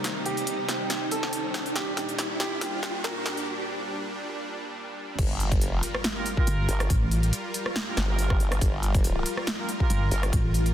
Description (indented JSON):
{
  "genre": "heavy wobble dubstep",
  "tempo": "140 BPM",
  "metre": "4/4",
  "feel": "swing 54% on 16ths, half-time",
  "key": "G minor",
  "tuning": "A4 = 440 Hz",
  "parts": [
    { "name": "dark concert grand piano", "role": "melody", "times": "0.0-3.5 s", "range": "G4 to Bb4", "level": "-34 LUFS", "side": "right 2 dB", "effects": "tape echo" },
    { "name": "supersaw pad", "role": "sustained chords", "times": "0.0-10.7 s", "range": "Bb2 to Bb4", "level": "-35 LUFS", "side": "equal", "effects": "sidechain pumping" },
    { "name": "big-room dance drum kit", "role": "drums", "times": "0.0-10.7 s", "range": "crash cymbal, hi-hat, rim click, snare drum", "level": "-31 LUFS", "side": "equal", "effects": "high-pass filter on hats, soft clipping on snare, high-pass filter on snare, high-pass filter on cymbals, high-pass filter on room" },
    { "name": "riser and impact", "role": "sound effects", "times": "0.1-6.9 s", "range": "none", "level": "-36 LUFS", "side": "right 1 dB", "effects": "none" },
    { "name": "granular cloud pad", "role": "texture", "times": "0.0-10.7 s", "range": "D4 to G5", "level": "-37 LUFS", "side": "equal", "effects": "built-in reverb, sidechain pumping" },
    { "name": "formant-sweep wobble bass", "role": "bass", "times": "5.2-10.3 s", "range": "G1", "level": "-26 LUFS", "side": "equal", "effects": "chorus, overdrive" },
    { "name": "electronic kick drum", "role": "drums", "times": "5.2-10.4 s", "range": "none", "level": "-25 LUFS", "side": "equal", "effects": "none" },
    { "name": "clear brass ensemble", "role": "stabs", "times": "6.2-10.2 s", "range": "F4 to Bb4", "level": "-35 LUFS", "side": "right 4 dB", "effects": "tape echo" },
    { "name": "pulsing pluck wobble bass", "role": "bass", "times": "6.5-7.3, 9.9-10.7 s", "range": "G1 to A1", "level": "-24 LUFS", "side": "equal", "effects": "chorus, overdrive" }
  ],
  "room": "light reverb",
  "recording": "dense, heavily limited modern master, high-pass filter",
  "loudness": "-24 LUFS",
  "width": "side -11 dB against mid",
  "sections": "0.0-5.2 A section; 5.2-10.7 B section",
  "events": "build-up 0.0-5.2; drum fill 0.0-3.5; riser 0.1-3.5; break 3.5-5.2; drop 5.2-10.7; impact 5.2-6.9",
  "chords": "0.0 Cm; 1.8 Bb6; 5.2 Gm7",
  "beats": "| 0.04 0.47 0.90 1.33 | 1.76 2.19 2.61 3.04 | 3.47 3.90 4.33 4.76 | 5.19 5.61 6.04 6.47 | 6.90 7.33 7.76 8.19 | 8.61 9.04 9.47 9.90 | 10.33"
}